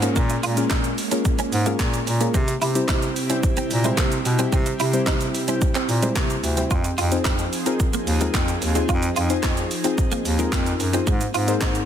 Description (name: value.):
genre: dance-pop.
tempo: 110 BPM.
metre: 4/4.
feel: straight.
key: unclear.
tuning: A4 = 440 Hz.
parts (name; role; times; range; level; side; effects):
deep mellow chord stab; accompaniment; 0.0-11.9 s; G3 to C5; -26 LUFS; left 3 dB; chorus.
airy breathy pad; sustained chords; 0.0-11.9 s; C3 to Ab4; -29 LUFS; right 1 dB; chorus, sidechain pumping.
clean electric guitar; riff; 0.0-11.8 s; Ab3 to F4; -29 LUFS; right 4 dB; ensemble chorus.
clear bass clarinet; bass; 0.0-11.8 s; D2 to C3; -24 LUFS; equal; sidechain pumping.
house drum kit; drums; 0.0-11.9 s; handclaps, hi-hat, kick drum, shaker, snare drum; -24 LUFS; equal; soft clipping on snare.
downlifter; sound effects; 0.0-2.3 s; none; -40 LUFS; equal; none.
group handclap; percussion; 0.7-11.7 s; none; -40 LUFS; left 8 dB; none.
room: light reverb, digital ambience.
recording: dense, heavily limited modern master.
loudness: -19 LUFS.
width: side -9 dB against mid.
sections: 0.0-11.9 A section.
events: none.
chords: 0.0 Bbm7; 2.3 C; 6.7 Fm7; 11.1 Abadd9.